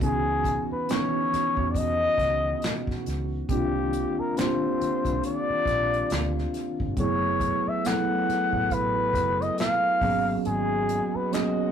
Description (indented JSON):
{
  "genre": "R&B, neo-soul",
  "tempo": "69 BPM",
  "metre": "4/4",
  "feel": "swing 58% on 16ths",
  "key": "unclear",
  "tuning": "A4 = 440 Hz",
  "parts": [
    { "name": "breathy flugelhorn", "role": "melody", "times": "0.0-11.7 s", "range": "G4 to F#5", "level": "-26 LUFS", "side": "left 2 dB", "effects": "none" },
    { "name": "mellow tine electric piano", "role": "accompaniment", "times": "0.0-11.7 s", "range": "D#3 to A4", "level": "-28 LUFS", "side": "right 2 dB", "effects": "medium stereo tremolo" },
    { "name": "warm French horn section", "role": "sustained chords", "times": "0.0-11.7 s", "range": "B2 to B4", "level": "-38 LUFS", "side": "left 1 dB", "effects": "none" },
    { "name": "vintage muted fingered electric bass", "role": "bass", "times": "0.0-11.2 s", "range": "F#1 to E2", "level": "-32 LUFS", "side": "equal", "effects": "none" },
    { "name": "unplugged drum kit", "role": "drums", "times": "0.0-11.6 s", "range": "handclaps, hi-hat, kick drum, snare drum", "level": "-32 LUFS", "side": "right 1 dB", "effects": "none" }
  ],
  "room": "moderate small room reverb, RT60 0.5 s",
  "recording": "rough rehearsal-room recording, tube saturation",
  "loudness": "-23 LUFS",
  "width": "side -8 dB against mid",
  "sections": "0.0-11.7 A section",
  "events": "none",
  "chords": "0.0 C#m11; 3.5 Cm11; 7.0 F#m11; 10.0 G#m11"
}